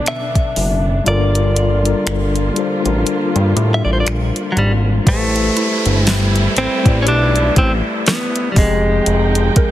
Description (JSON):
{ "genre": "contemporary R&B", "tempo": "60 BPM", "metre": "4/4", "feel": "swing 58% on 16ths", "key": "A minor", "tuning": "A4 = 440 Hz", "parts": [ { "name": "direct-recorded clean electric guitar", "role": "melody", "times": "0.0-9.7 s", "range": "F#3 to E5", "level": "-19 LUFS", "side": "equal", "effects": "tape echo" }, { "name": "mellow tine electric piano", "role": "accompaniment", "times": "0.0-9.7 s", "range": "F3 to Eb5", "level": "-21 LUFS", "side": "left 4 dB", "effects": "medium stereo tremolo" }, { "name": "warm studio string section", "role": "sustained chords", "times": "0.0-9.7 s", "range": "C3 to G5", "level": "-25 LUFS", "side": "right 3 dB", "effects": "sidechain pumping" }, { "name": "smooth R&B drum kit", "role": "drums", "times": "0.1-9.7 s", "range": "finger snaps, hi-hat, kick drum, snare drum", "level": "-17 LUFS", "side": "equal", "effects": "soft clipping on snare" }, { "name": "fat analog bass", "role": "bass", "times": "0.6-9.5 s", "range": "F1 to A2", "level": "-16 LUFS", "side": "equal", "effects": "none" }, { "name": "mallet-like synth pluck", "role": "texture", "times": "3.6-9.7 s", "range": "E4 to Bb4", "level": "-29 LUFS", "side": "right 2 dB", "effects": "none" }, { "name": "downlifter", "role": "sound effects", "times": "5.1-9.7 s", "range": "none", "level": "-24 LUFS", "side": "right 1 dB", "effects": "none" } ], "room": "light reverb, digital ambience", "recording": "dense, heavily limited modern master", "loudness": "-13 LUFS", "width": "side -13 dB against mid", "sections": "0.0-5.1 A section; 5.1-9.7 B section", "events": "kick muted 1.1-5.1", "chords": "0.0 Bm9; 1.1 Gm9; 5.1 Am9; 8.6 Fm9", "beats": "0.06 | 1.06 2.06 3.06 4.06 | 5.06 6.06 7.06 8.06 | 9.06" }